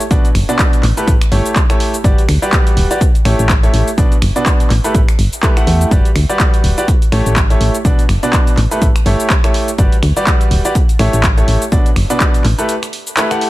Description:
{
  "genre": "piano house",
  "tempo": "124 BPM",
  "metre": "4/4",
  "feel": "swing 58% on 16ths",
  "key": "A mixolydian",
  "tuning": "A4 = 440 Hz",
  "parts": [
    { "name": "punchy analog drum machine", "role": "drums", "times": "0.0-13.5 s", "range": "finger snaps, handclaps, hi-hat, shaker", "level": "-20 LUFS", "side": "equal", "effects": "none" },
    { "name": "bright concert grand piano", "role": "riff", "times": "0.1-13.5 s", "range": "B2 to F#5", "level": "-18 LUFS", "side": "equal", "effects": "sidechain pumping, dub echo" },
    { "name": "solid FM bass", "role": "bass", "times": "0.1-12.5 s", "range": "D1 to E2", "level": "-14 LUFS", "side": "equal", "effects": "sidechain pumping" },
    { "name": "electronic kick drum", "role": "drums", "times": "0.1-12.3 s", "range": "none", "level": "-13 LUFS", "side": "equal", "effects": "none" }
  ],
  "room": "little or no reverb",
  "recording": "none",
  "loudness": "-10 LUFS",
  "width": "side -17 dB against mid",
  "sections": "0.0-13.5 A section",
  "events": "break 12.7-13.5",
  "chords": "0.1 Bm; 0.8 A7; 2.0 Gmaj7; 3.0 A7; 4.0 Bm; 4.7 A5; 5.9 Gmaj7; 6.9 A7; 7.8 Bm; 8.6 A7; 9.8 Gmaj7; 10.8 A7; 11.7 Bm; 12.4 A5"
}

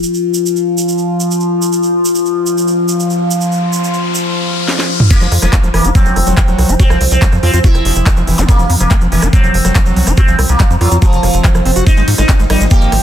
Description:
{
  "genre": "psychedelic trance",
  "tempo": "142 BPM",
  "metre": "4/4",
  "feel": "straight",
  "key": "unclear",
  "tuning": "A4 = 439 Hz",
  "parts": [
    { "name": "overtone-sweeping drone", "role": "sustained chords", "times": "0.0-13.0 s", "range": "F3 to F4", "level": "-16 LUFS", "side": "left 2 dB", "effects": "chorus, built-in reverb, sidechain pumping" },
    { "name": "tube shaker", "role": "percussion", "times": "0.0-12.9 s", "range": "none", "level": "-24 LUFS", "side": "right 5 dB", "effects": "none" },
    { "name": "sub drop, riser and zap", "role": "sound effects", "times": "0.0-5.1, 8.4-8.5 s", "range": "none", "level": "-22 LUFS", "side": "left 3 dB", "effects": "none" },
    { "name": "drum and bass drum kit", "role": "drums", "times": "4.7-13.0 s", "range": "crash cymbal, handclaps, hi-hat, ride cymbal, rim click, snare drum, toms", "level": "-18 LUFS", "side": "right 1 dB", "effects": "none" },
    { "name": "sitar", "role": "melody", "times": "5.1-13.0 s", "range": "F3 to G4", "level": "-17 LUFS", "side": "right 2 dB", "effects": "phaser, sidechain pumping, digital delay" },
    { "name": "electronic kick drum", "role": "drums", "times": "5.1-12.8 s", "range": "none", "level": "-10 LUFS", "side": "equal", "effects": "none" },
    { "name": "overdriven acid bass", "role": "riff", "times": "5.2-13.0 s", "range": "E3 to Gb4", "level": "-19 LUFS", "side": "equal", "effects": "distortion, auto-pan, cassette tape, sidechain pumping, digital delay" },
    { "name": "tight sequencer bass", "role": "bass", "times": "5.2-13.0 s", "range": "F1 to Ab2", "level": "-13 LUFS", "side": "equal", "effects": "none" }
  ],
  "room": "light reverb",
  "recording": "dense, heavily limited modern master",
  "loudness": "-10 LUFS",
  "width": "side -9 dB against mid",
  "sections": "0.0-5.1 A section; 5.1-13.0 B section",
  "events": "riser 2.8-5.1; drum fill 4.7-5.1; drop 5.1-13.0",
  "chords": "0.0 N.C.; 5.1 F5; 11.9 Ab5"
}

